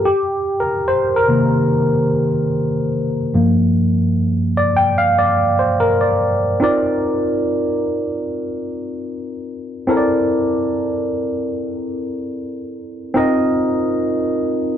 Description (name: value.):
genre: soul.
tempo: 73 BPM.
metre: 4/4.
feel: straight.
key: C dorian.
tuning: A4 = 440 Hz.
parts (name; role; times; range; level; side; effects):
tine electric piano; solo; 0.0-14.8 s; G2 to G5; -16 LUFS; equal; lush chorus.
room: light reverb.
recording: dry, close 1970s-style studio recording.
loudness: -15 LUFS.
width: side -9 dB against mid.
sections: 0.0-6.6 A section; 6.6-14.8 B section.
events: tine electric piano solo 0.0-6.6.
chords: 0.0 Cm7; 3.3 Gm7; 6.6 Cm11; 9.9 C13; 13.2 F7sus4.